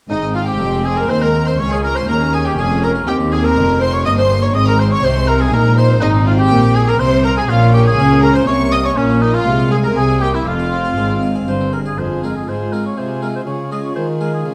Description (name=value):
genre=classical, baroque-style concerto movement with solo episodes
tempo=122 BPM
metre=3/4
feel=straight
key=Ab major, F minor from 6.0 s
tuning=A4 = 440 Hz
part: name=clear studio violin section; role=melody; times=0.1-14.5 s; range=Db5 to Eb6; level=-27 LUFS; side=equal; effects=none
part: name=warm oboe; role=melody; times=0.1-14.5 s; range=Db4 to Eb5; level=-23 LUFS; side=equal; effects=none
part: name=rich chamber violin section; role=second line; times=0.1-14.5 s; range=Db4 to Eb5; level=-24 LUFS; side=equal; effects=none
part: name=harpsichord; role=accompaniment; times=0.1-14.5 s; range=Db2 to Ab4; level=-26 LUFS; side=equal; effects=none
part: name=warm chamber viola section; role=accompaniment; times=0.1-14.5 s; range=Ab3 to F4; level=-25 LUFS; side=equal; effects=none
part: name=dark studio double bass section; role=bass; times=0.1-12.0 s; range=F1 to Eb2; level=-20 LUFS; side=equal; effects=none
part: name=rich studio cello section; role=bass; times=0.1-14.5 s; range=Db2 to Eb3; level=-22 LUFS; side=equal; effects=none
room=moderate recital hall reverb, RT60 1.4 s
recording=dark, warm production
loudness=-15 LUFS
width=mono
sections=0.1-12.0 A section; 12.0-14.5 B section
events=none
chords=0.1 Ab; 1.6 Db; 3.1 Eb7; 4.5 Ab; 6.0 Fm/Ab; 7.5 Bbm; 9.0 Bbmadd11; 9.5 Fm/C; 10.0 C7b13; 10.5 Fm; 13.5 Db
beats=| 0.10 0.60 1.09 | 1.59 2.08 2.58 | 3.08 3.57 4.06 | 4.55 5.04 5.53 | 6.02 6.51 7.00 | 7.50 7.99 8.48 | 8.97 9.47 9.96 | 10.47 10.97 11.48 | 11.98 12.48 12.97 | 13.47 13.96 14.46